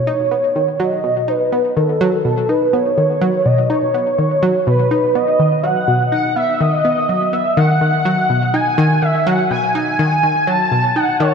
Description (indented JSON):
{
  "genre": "ambient, sequencer-driven space music",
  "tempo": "124 BPM",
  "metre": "4/4",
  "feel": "straight",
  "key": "unclear",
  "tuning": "A4 = 439 Hz",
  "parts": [
    { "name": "expressive portamento lead", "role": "melody", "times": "0.0-11.3 s", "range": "A4 to A5", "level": "-16 LUFS", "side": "equal", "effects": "ensemble chorus, ping-pong delay" },
    { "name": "analog pluck", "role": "riff", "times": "0.0-11.3 s", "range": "B2 to D#4", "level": "-17 LUFS", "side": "equal", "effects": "chorus, ping-pong delay" }
  ],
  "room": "wet lush hall reverb, RT60 3.0 s",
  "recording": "dark, warm production",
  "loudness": "-13 LUFS",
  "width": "side -6 dB against mid",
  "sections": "0.0-11.3 A section",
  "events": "none",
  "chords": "0.0 B",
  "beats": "0.31 0.80 1.28 | 1.77 2.25 2.73 3.22 | 3.70 4.18 4.67 5.15 | 5.64 6.12 6.60 7.09 | 7.57 8.06 8.54 9.02 | 9.51 9.99 10.47 10.96"
}